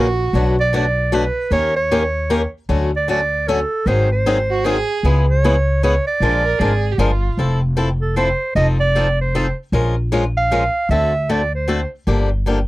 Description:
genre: acoustic string swing (jazz manouche)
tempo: 153 BPM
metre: 3/4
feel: swing 61% on 8ths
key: F major from 7.4 s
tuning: A4 = 440 Hz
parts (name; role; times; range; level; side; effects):
- clear clarinet; melody; 0.0-11.9 s; A4 to F5; -19 LUFS; right 2 dB; none
- warm violin; second line; 0.0-0.5, 4.5-7.4 s; F4 to Bb4; -23 LUFS; right 5 dB; none
- picked swing-style acoustic guitar; accompaniment; 0.0-12.6 s; B2 to A#4; -19 LUFS; left 2 dB; none
- upright bass; bass; 0.0-12.7 s; F1 to D#2; -18 LUFS; equal; none
room: little or no reverb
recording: dry, close 1970s-style studio recording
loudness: -15 LUFS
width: side -18 dB against mid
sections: 0.0-7.4 A section; 7.4-12.7 B section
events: none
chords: 0.3 Bm7; 1.5 D#7; 2.7 Dmaj7; 3.9 G#7; 5.0 C#m7; 6.2 Bb7; 7.4 Fmaj7; 8.6 F7; 9.7 Bbm7; 10.9 D7; 12.1 Gm7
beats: | 0.34 0.73 1.12 | 1.51 1.91 2.30 | 2.69 3.08 3.47 | 3.86 4.25 4.64 | 5.04 5.43 5.82 | 6.21 6.60 6.99 | 7.38 7.77 8.17 | 8.56 8.95 9.34 | 9.73 10.12 10.52 | 10.91 11.30 11.69 | 12.08 12.47

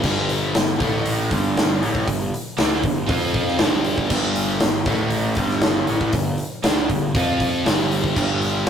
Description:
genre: hard rock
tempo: 118 BPM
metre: 4/4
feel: straight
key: unclear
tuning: A4 = 440 Hz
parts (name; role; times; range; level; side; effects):
- biting overdriven guitar; riff; 0.0-8.7 s; G2 to F4; -22 LUFS; right 1 dB; phaser
- fuzz picked electric bass; bass; 0.0-8.6 s; G1 to F2; -25 LUFS; equal; overdrive
- big rock drum kit; drums; 0.0-8.7 s; crash cymbal, hi-hat, kick drum, snare drum; -22 LUFS; equal; none
room: moderate small room reverb, RT60 0.5 s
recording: rough rehearsal-room recording, tube saturation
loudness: -18 LUFS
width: side -8 dB against mid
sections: 0.0-8.7 A section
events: none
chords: 0.0 G5; 0.8 A5; 1.3 G5; 3.1 F5; 3.6 G5; 4.9 A5; 5.4 G5; 7.1 F5; 7.7 G5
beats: | 0.05 0.55 1.06 1.57 | 2.08 2.59 3.09 3.60 | 4.11 4.62 5.12 5.63 | 6.14 6.64 7.15 7.66 | 8.16 8.67

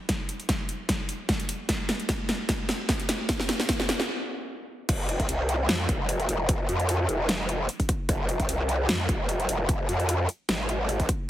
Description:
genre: heavy wobble dubstep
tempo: 150 BPM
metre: 4/4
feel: swing 54% on 16ths, half-time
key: F minor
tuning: A4 = 445 Hz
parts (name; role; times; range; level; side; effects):
- big-room dance drum kit; drums; 0.1-11.2 s; crash cymbal, hi-hat, snare drum; -28 LUFS; equal; none
- electronic kick drum; drums; 0.1-11.2 s; none; -29 LUFS; equal; none
- growl bass; bass; 4.9-11.1 s; F1 to F2; -26 LUFS; equal; chorus, overdrive
room: moderate lush hall reverb, RT60 1.8 s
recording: heavily compressed radio sound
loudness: -24 LUFS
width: side -13 dB against mid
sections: 0.0-4.9 A section; 4.9-11.3 B section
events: build-up 0.0-4.9; drum fill 0.0-4.1; stop 4.1-4.9; drop 4.9-11.3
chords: none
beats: | 0.09 0.49 0.89 1.29 | 1.69 2.09 2.49 2.89 | 3.29 3.69 4.09 4.49 | 4.89 5.29 5.69 6.09 | 6.49 6.89 7.29 7.69 | 8.09 8.49 8.89 9.29 | 9.69 10.09 10.49 10.89

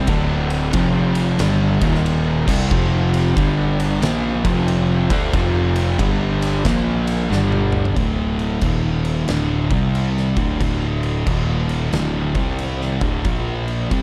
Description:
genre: stoner and doom metal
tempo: 91 BPM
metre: 4/4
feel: swing 64% on 8ths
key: D minor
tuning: A4 = 443 Hz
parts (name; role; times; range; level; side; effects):
- overdriven tonewheel organ; sustained chords; 0.0-8.0 s; F3 to G5; -34 LUFS; equal; none
- overdriven electric guitar; riff; 0.0-8.0 s; D2 to D4; -29 LUFS; equal; none
- thick fuzz guitar; riff; 0.0-14.0 s; D2 to D4; -24 LUFS; equal; distortion
- thick fuzz guitar; riff; 0.0-14.0 s; D2 to D4; -25 LUFS; equal; distortion
- fuzz fingered electric bass; bass; 0.0-14.0 s; D1 to D2; -26 LUFS; equal; overdrive
- oversized low-tuned drum kit; drums; 0.1-14.0 s; crash cymbal, kick drum, ride cymbal, snare drum, toms; -26 LUFS; equal; none
room: little or no reverb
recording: dark, warm production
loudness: -19 LUFS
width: mono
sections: 0.0-8.0 A section; 8.0-14.0 B section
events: drum fill 7.3-8.0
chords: 0.0 D5; 0.7 F5; 1.4 D5; 1.7 Eb5; 2.4 D5; 2.7 F5; 3.4 G5; 4.0 F5; 6.0 G5; 6.6 Bb5; 7.3 G5; 8.0 D5; 8.6 Eb5; 9.3 D5; 9.6 C5; 10.3 D5; 11.3 Eb5; 11.9 D5; 12.3 C5; 12.9 D5; 13.3 Bb5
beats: | 0.09 0.74 1.40 2.05 | 2.71 3.36 4.02 4.68 | 5.33 5.99 6.65 7.31 | 7.97 8.63 9.29 9.95 | 10.61 11.27 11.93 12.59 | 13.25 13.91

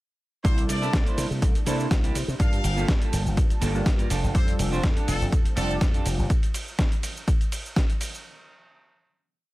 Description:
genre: filtered disco house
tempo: 123 BPM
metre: 4/4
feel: swing 54% on 16ths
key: unclear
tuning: A4 = 440 Hz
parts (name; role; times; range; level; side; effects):
- muted trumpet section; melody; 0.4-5.7 s; A4 to F5; -35 LUFS; left 1 dB; sidechain pumping, tape echo
- funky polysynth comp; accompaniment; 0.4-6.3 s; G3 to A5; -32 LUFS; equal; chorus, phaser, cassette tape, sidechain pumping
- slap bass with an envelope filter; bass; 0.4-6.3 s; F1 to C3; -27 LUFS; equal; tube saturation, sidechain pumping
- dusty soul sampler-style drum kit; drums; 0.4-8.2 s; hi-hat, ride cymbal, shaker, snare drum; -31 LUFS; equal; sidechain pumping on hats, sidechain pumping on cymbals, sidechain pumping on perc
- electronic kick drum; drums; 0.4-7.9 s; none; -23 LUFS; equal; none
- clean electric guitar; riff; 0.8-6.2 s; Bb3 to C5; -32 LUFS; right 3 dB; sidechain pumping
room: little or no reverb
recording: none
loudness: -22 LUFS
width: side -18 dB against mid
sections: 0.4-8.3 drop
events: drop 0.4-8.3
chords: 0.4 C13; 2.4 Gm9; 4.1 F69; 6.3 N.C.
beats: | 0.45 0.93 1.42 1.91 | 2.40 2.89 3.37 3.86 | 4.35 4.84 5.33 5.81 | 6.30 6.79 7.28 7.76

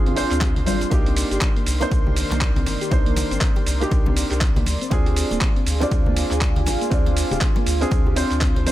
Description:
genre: deep house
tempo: 120 BPM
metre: 4/4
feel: swing 60% on 16ths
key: unclear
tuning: A4 = 440 Hz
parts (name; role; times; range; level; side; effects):
- dark analog pad; sustained chords; 0.0-8.7 s; Ab4 to C6; -32 LUFS; right 1 dB; chorus, sidechain pumping
- felt-muted upright piano; stabs; 0.0-8.7 s; Bb3 to D5; -26 LUFS; right 1 dB; sidechain pumping, tape echo
- round analog bass; bass; 0.0-8.7 s; D1 to D2; -24 LUFS; equal; sidechain pumping
- deep dark ambient pad; texture; 0.0-8.7 s; Eb3 to D6; -33 LUFS; right 2 dB; chorus, built-in reverb, sidechain pumping
- soft round pluck; arpeggios; 0.1-8.7 s; G3 to C5; -30 LUFS; left 2 dB; lush chorus, sidechain pumping, tape echo
- dusty soul sampler-style drum kit; drums; 0.1-8.7 s; handclaps, hi-hat, ride cymbal, shaker; -27 LUFS; right 1 dB; none
- congas; percussion; 0.1-8.7 s; none; -31 LUFS; left 2 dB; none
- electronic kick drum; drums; 0.4-8.5 s; none; -21 LUFS; equal; none
room: digital ambience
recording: none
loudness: -18 LUFS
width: side -14 dB against mid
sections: 0.0-8.7 A section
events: none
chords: 0.0 Dm7b5; 0.9 Cm9; 4.7 Dm7b5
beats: 0.41 | 0.92 1.42 1.92 2.42 | 2.92 3.42 3.92 4.42 | 4.92 5.42 5.92 6.42 | 6.92 7.42 7.92 8.41

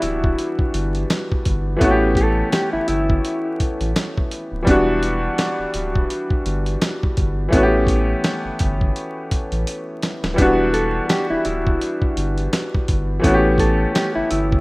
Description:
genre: hip hop, boom-bap hip-hop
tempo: 84 BPM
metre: 4/4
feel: swing 57% on 16ths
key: E dorian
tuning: A4 = 440 Hz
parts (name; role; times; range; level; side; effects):
- mellow electric guitar; melody; 0.0-3.9, 10.7-14.6 s; E4 to A4; -23 LUFS; equal; high-pass filter, low-pass filter, analog delay
- bright upright piano; accompaniment; 0.0-14.6 s; E3 to G4; -20 LUFS; equal; cassette tape, high-pass filter, low-pass filter
- saturated sub bass; bass; 0.0-14.6 s; D1 to A1; -22 LUFS; equal; none
- dusty soul sampler-style drum kit; drums; 0.0-14.6 s; hi-hat, kick drum, snare drum; -21 LUFS; equal; none
room: digital ambience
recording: rough home demo mix, vinyl crackle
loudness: -17 LUFS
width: side -24 dB against mid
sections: 0.0-14.6 A section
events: drum fill 9.7-10.4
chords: 0.0 Em7; 1.8 A7; 4.7 Em7; 7.5 A7; 10.4 Em7; 13.2 A7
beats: 0.38 1.10 | 1.81 2.52 3.24 3.95 | 4.67 5.38 6.10 6.81 | 7.52 8.24 8.95 9.67 | 10.38 11.10 11.81 12.52 | 13.24 13.95

